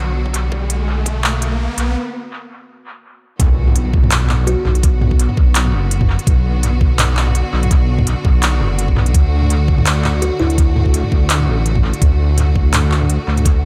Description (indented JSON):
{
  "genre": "half-time drum and bass",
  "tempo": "167 BPM",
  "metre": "4/4",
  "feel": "swing 55% on 16ths, half-time",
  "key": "B minor",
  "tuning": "A4 = 439 Hz",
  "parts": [
    { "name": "clear studio string section", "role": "sustained chords", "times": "0.0-13.7 s", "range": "D3 to F#4", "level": "-28 LUFS", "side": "equal", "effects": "sidechain pumping" },
    { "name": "dark detuned saw bass", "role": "bass", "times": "0.0-13.7 s", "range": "F#1 to D2", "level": "-18 LUFS", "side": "equal", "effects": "none" },
    { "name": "riser and impact", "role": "sound effects", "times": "0.0-4.8 s", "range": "none", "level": "-26 LUFS", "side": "equal", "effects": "none" },
    { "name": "electronic kick drum", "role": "drums", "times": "0.3-1.1, 3.4-13.5 s", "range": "none", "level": "-16 LUFS", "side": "equal", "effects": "high-pass filter on kick" },
    { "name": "industrial drum kit", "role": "drums", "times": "0.3-13.5 s", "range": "handclaps, hi-hat, toms", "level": "-22 LUFS", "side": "equal", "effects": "high-pass filter on hats, high-pass filter on toms, high-pass filter on snare, high-pass filter on room, dub echo" },
    { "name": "kalimba", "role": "melody", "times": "4.5-4.8, 10.2-10.8 s", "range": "E4 to F#4", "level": "-28 LUFS", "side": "equal", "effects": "dub echo" }
  ],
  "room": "little or no reverb",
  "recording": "echo-heavy mix",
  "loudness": "-15 LUFS",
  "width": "mono",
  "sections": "0.0-3.4 A section; 3.4-13.7 B section",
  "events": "build-up 0.0-3.4; riser 0.0-2.0; break 2.0-3.4; drop 3.4-13.7; impact 3.4-4.8",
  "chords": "0.0 Bm; 9.1 D"
}